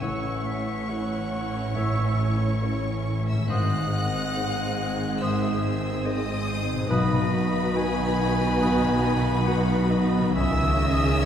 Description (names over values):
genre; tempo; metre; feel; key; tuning
cinematic, emotional film score for orchestra; 70 BPM; 4/4; rubato; unclear; A4 = 438 Hz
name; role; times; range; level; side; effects
warm studio violin section; melody; 0.0-11.3 s; B5 to F#6; -34 LUFS; left 2 dB; none
clear clarinet; second line; 0.0-11.3 s; B#4 to G#5; -33 LUFS; equal; none
concert flute; second line; 0.0-11.3 s; D#6 to E6; -35 LUFS; equal; none
rich chamber violin section; second line; 0.0-11.3 s; B4 to F#5; -34 LUFS; left 2 dB; none
warm cor anglais; second line; 0.0-11.3 s; G#4 to C#5; -38 LUFS; right 2 dB; none
felt-muted upright piano; accompaniment; 0.0-11.3 s; G#1 to C#5; -29 LUFS; left 1 dB; none
rich studio viola section; accompaniment; 0.0-11.3 s; D#3 to G#4; -33 LUFS; right 1 dB; none
warm French horn section; sustained chords; 0.0-11.3 s; D#3 to C#4; -34 LUFS; left 1 dB; none
concert harp; arpeggios; 0.0-11.3 s; G#2 to C#5; -35 LUFS; left 3 dB; none
rich symphonic cello section; bass; 0.0-11.3 s; G#2 to C#3; -30 LUFS; right 2 dB; none
rich symphonic double bass section; bass; 0.0-11.3 s; G#1 to C#2; -29 LUFS; right 1 dB; none
room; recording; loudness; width
wet concert hall reverb, RT60 2.4 s; heard from further back in the room; -22 LUFS; side -9 dB against mid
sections
0.0-11.3 A section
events
none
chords
0.0 A; 3.5 G#; 6.9 B; 10.4 C#madd9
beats
| 0.02 0.89 1.76 2.63 | 3.50 4.36 5.22 6.06 | 6.91 7.77 8.62 9.47 | 10.37 11.23